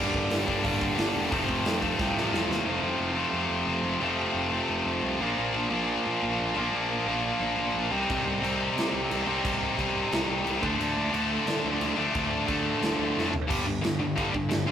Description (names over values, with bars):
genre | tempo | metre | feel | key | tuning
punk rock | 177 BPM | 4/4 | straight | unclear | A4 = 440 Hz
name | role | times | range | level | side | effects
tight distorted guitar | riff | 0.0-14.7 s | F2 to Eb4 | -27 LUFS | left 4 dB | distortion
tight distorted guitar | riff | 0.0-14.7 s | F2 to D4 | -31 LUFS | right 5 dB | distortion
fuzz picked electric bass | bass | 0.0-14.7 s | E1 to D3 | -34 LUFS | right 1 dB | overdrive
big rock drum kit | drums | 0.1-2.6, 8.1-14.6 s | crash cymbal, hi-hat, kick drum, snare drum, toms | -32 LUFS | right 1 dB | none
room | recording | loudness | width
light reverb | rough rehearsal-room recording, tube saturation | -25 LUFS | side -9 dB against mid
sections
0.0-2.7 A section; 2.7-13.5 B section; 13.5-14.7 C section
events
drum fill 2.0-2.7, 13.2-13.5; half time 2.7-13.5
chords
0.0 Gm; 1.3 F; 5.2 Bb; 7.9 Cm; 10.6 Dm; 13.5 G5